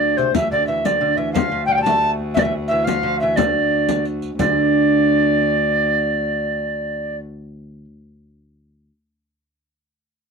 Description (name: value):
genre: medieval dance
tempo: 119 BPM (dotted quarters)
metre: 6/8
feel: straight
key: D minor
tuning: A4 = 441 Hz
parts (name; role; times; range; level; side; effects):
- alto recorder; melody; 0.0-7.2 s; C5 to A5; -18 LUFS; equal; none
- lute; second line; 0.0-7.8 s; C3 to A3; -22 LUFS; right 2 dB; none
- rich viola da gamba; drone; 0.0-7.2 s; D2; -26 LUFS; left 2 dB; stereo widening
- frame drum; percussion; 0.2-4.6 s; none; -22 LUFS; left 11 dB; none
- riq; percussion; 0.2-4.5 s; none; -27 LUFS; right 8 dB; none
room: light reverb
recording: dry, close 1970s-style studio recording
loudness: -16 LUFS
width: side -5 dB against mid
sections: 0.0-4.4 A section; 4.4-6.4 B section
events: none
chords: none